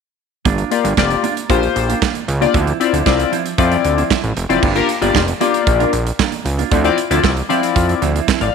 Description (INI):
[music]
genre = early-eighties boogie funk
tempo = 115 BPM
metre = 4/4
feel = straight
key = G dorian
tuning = A4 = 441 Hz
[part]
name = mellow electric guitar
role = riff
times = 0.5-8.5 s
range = F3 to G4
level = -22 LUFS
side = right 13 dB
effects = lush chorus
[part]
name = fat analog bass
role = bass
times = 0.5-8.5 s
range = F1 to F2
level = -18 LUFS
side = right 1 dB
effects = none
[part]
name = modern studio drum kit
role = drums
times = 0.5-8.5 s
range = crash cymbal, handclaps, hi-hat, kick drum, snare drum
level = -20 LUFS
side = right 5 dB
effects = none
[part]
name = chorused polysynth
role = accompaniment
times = 0.7-8.5 s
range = Bb3 to F5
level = -17 LUFS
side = left 10 dB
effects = none
[sound]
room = light reverb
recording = 1960s-style stereo with parts hard left and right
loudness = -14 LUFS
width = side -6 dB against mid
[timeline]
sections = 0.5-4.6 A section; 4.6-8.5 B section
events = none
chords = 0.5 Gm7; 2.5 Dm9; 4.6 Gm7; 6.7 Dm9